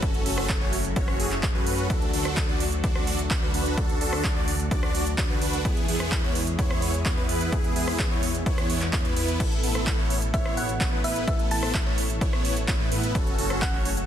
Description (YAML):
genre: EDM, festival progressive house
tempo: 128 BPM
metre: 4/4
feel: straight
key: A major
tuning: A4 = 440 Hz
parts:
  - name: lush unison pad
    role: sustained chords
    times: 0.0-14.1 s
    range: B2 to A4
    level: -35 LUFS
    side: left 1 dB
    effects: chorus, sidechain pumping
  - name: supersaw chords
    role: riff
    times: 0.0-13.9 s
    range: B3 to D5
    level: -29 LUFS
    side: equal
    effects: sidechain pumping, ping-pong delay
  - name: wide detuned saw bass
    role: bass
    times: 0.0-14.1 s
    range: F#1 to A2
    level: -30 LUFS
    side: equal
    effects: chorus, sidechain pumping
  - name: big-room dance drum kit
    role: drums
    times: 0.0-14.1 s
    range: crash cymbal, handclaps, hi-hat, rim click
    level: -31 LUFS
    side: right 2 dB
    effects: overdrive
  - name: electronic kick drum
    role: drums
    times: 0.0-13.7 s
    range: none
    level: -26 LUFS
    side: equal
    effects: overdrive
  - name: thumb-piano-like synth pluck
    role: melody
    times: 10.3-14.1 s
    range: E5 to A5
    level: -32 LUFS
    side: equal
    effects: chorus, ping-pong delay
room: light reverb, digital ambience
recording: dense, heavily limited modern master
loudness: -22 LUFS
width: side -10 dB against mid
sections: 0.0-14.1 A section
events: none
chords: 0.0 F#m; 1.9 D; 5.7 E; 9.4 Asus2; 13.2 F#m